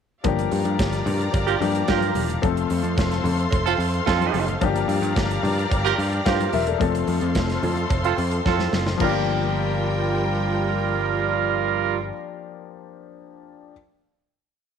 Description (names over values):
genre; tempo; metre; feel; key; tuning
disco; 110 BPM; 4/4; straight; G minor; A4 = 440 Hz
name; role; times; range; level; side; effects
clear concert grand piano; accompaniment; 0.2-13.7 s; F3 to F5; -26 LUFS; left 10 dB; none
clear studio string section; sustained chords; 0.2-12.0 s; G3 to C6; -29 LUFS; equal; none
picked electric bass; bass; 0.2-12.1 s; E1 to G2; -25 LUFS; right 1 dB; none
modern studio drum kit; drums; 0.2-9.1 s; crash cymbal, hi-hat, kick drum, snare drum; -27 LUFS; right 1 dB; none
cowbell; percussion; 0.2-9.3 s; none; -36 LUFS; right 12 dB; none
congas; percussion; 0.3-9.3 s; none; -33 LUFS; left 7 dB; none
clear horn section; stabs; 1.5-12.0 s; G3 to Bb4; -24 LUFS; right 11 dB; slapback echo
room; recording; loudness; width
light reverb; 1960s-style stereo with parts hard left and right; -20 LUFS; side -7 dB against mid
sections
0.2-9.0 groove; 9.0-11.2 final chord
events
drum fill 8.5-9.0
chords
0.2 Gm7; 2.4 F; 4.6 Gm7; 6.8 F; 9.0 Gm7